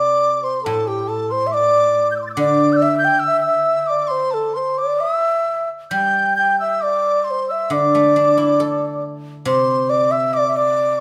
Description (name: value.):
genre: chinese traditional, Chinese chamber ensemble.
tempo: 69 BPM.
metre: 2/4.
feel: rubato.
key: unclear.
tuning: A4 = 440 Hz.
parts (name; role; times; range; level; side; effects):
breathy reedy low xiao; melody; 0.0-11.0 s; G4 to G5; -20 LUFS; equal; none.
mellow hollow dizi; second line; 0.0-11.0 s; G5 to A6; -23 LUFS; equal; none.
guzheng; accompaniment; 0.0-11.0 s; A2 to A4; -26 LUFS; equal; none.
room: moderate recital hall reverb, RT60 1.8 s.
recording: none.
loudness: -18 LUFS.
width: mono.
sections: 0.0-11.0 A section.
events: none.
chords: none.